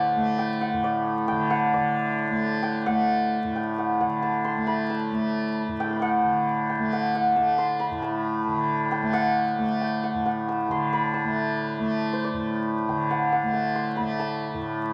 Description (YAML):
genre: indian classical, Hindustani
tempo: 135 BPM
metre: 7/4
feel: straight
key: A raga bageshri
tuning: A4 = 438 Hz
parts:
  - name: santur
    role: melody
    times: 0.0-14.9 s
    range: C5 to E6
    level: -29 LUFS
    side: equal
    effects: none
  - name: tanpura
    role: drone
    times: 0.0-14.9 s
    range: A2 to A3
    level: -28 LUFS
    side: equal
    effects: none
room: wet small room reverb, RT60 0.5 s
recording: vinyl crackle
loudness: -25 LUFS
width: mono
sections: 0.0-1.7 A section; 1.7-14.9 B section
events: speeding up 0.0-14.9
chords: none